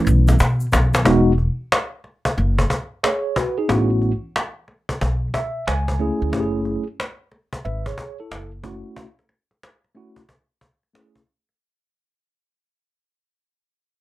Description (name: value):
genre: hip hop, jazz-hop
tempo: 91 BPM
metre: 4/4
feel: swing 65% on 16ths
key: unclear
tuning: A4 = 442 Hz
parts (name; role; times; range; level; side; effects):
- mellow tine electric piano; accompaniment; 0.0-11.2 s; E3 to G#5; -21 LUFS; right 1 dB; medium stereo tremolo
- cajon; drums; 0.0-11.5 s; none; -22 LUFS; equal; none
- upright bass; bass; 0.1-8.8 s; E1 to B2; -19 LUFS; equal; none
- tube shaker and congas; percussion; 0.1-1.0 s; none; -28 LUFS; left 2 dB; none
room: light reverb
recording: none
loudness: -18 LUFS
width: side -16 dB against mid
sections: 0.0-1.1 A section; 1.1-11.6 B section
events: drum fill 0.0-1.1; tine electric piano solo 0.0-1.1; fade-out 1.1-11.6; tine electric piano fill 5.0-6.3; break 9.0-11.6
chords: 0.0 B7sus4; 1.1 Emaj9; 3.7 A69; 5.7 C#5; 6.3 F#m9; 8.3 F#5; 9.0 Amaj7